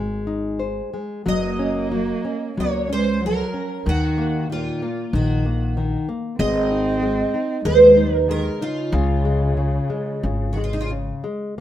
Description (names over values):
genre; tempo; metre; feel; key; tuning
fado-style ballad; 94 BPM; 4/4; rubato; Db major; A4 = 440 Hz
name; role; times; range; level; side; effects
nylon-string guitar; accompaniment; 0.0-11.6 s; Db3 to C5; -25 LUFS; left 3 dB; plate reverb
upright bass; bass; 0.0-11.1 s; Gb1 to Eb2; -24 LUFS; equal; none
picked twelve-string acoustic guitar; melody; 1.3-10.9 s; Eb4 to Eb5; -20 LUFS; right 2 dB; ensemble chorus, plate reverb
dark cello; second line; 1.3-10.9 s; Bb2 to C4; -26 LUFS; right 4 dB; plate reverb
room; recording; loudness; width
moderate studio reverb, RT60 0.5 s; rough home demo mix; -18 LUFS; side -12 dB against mid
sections
0.0-11.6 A section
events
none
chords
0.0 Ab; 1.3 Gb; 3.9 Ebmadd9; 6.4 Ab; 8.9 Db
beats
0.60 | 1.26 1.92 2.57 3.22 | 3.85 4.49 5.13 5.76 | 6.39 7.02 7.65 8.28 | 8.92 9.57 10.23 10.90 | 11.58